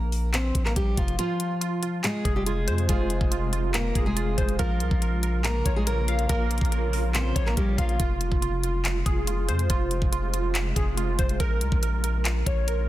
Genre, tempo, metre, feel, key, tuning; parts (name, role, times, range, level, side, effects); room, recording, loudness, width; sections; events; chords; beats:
hip hop, trap; 141 BPM; 4/4; half-time; F minor; A4 = 440 Hz
fingerpicked steel-string acoustic guitar; melody; 0.0-8.0 s; F3 to C5; -30 LUFS; left 1 dB; digital delay
long sustained 808-style bass; bass; 0.0-12.9 s; F1 to F2; -27 LUFS; equal
trap drum kit; drums; 0.1-12.8 s; handclaps, hi-hat, kick drum; -26 LUFS; equal
glassy digital keys; accompaniment; 1.2-12.9 s; F4 to F5; -31 LUFS; right 3 dB; chorus
granular cloud pad; sustained chords; 2.2-12.9 s; C3 to F4; -35 LUFS; left 1 dB; built-in reverb
digital ambience; dense, heavily limited modern master; -23 LUFS; side -14 dB against mid
0.0-12.9 A section
break 0.0-1.2; kick muted 1.2-1.6
0.0 Fm; 4.6 Bbm; 8.0 Fm; 11.4 Bbm
0.34 0.76 | 1.19 1.61 2.04 2.46 | 2.89 3.32 3.74 4.17 | 4.59 5.02 5.44 5.87 | 6.29 6.72 7.14 7.57 | 8.00 8.42 8.85 9.27 | 9.70 10.12 10.55 10.97 | 11.40 11.83 12.25 12.68